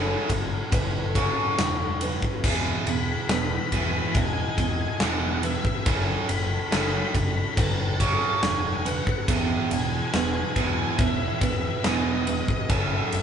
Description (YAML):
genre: post-rock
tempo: 70 BPM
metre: 4/4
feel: straight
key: E major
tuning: A4 = 444 Hz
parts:
  - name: clear symphonic string section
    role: sustained chords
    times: 0.0-13.2 s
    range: E3 to A4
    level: -36 LUFS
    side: left 3 dB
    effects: none
  - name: electric guitar through a small old amp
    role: arpeggios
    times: 0.0-13.2 s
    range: G#4 to E5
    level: -32 LUFS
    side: right 1 dB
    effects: spring reverb
  - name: crunchy overdriven guitar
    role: riff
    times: 0.0-13.2 s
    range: E2 to F#3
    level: -29 LUFS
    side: right 6 dB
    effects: none
  - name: growling picked electric bass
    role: bass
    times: 0.0-13.2 s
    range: E1 to F#1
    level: -30 LUFS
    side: left 1 dB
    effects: overdrive
  - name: huge arena drum kit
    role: drums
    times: 0.3-13.2 s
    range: crash cymbal, kick drum, ride cymbal, snare drum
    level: -26 LUFS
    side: left 1 dB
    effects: none
  - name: octave-fuzz lead guitar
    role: melody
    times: 2.9-13.2 s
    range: D#5 to B5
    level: -33 LUFS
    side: left 4 dB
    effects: distortion
room: wet large studio reverb, RT60 1.4 s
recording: band playing live in one room, nothing above 10.6 kHz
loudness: -22 LUFS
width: side -8 dB against mid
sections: 0.0-13.2 A section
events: none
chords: 0.0 F#m7; 2.4 Emaj7; 5.9 F#m7; 9.3 Emaj7; 12.7 F#m7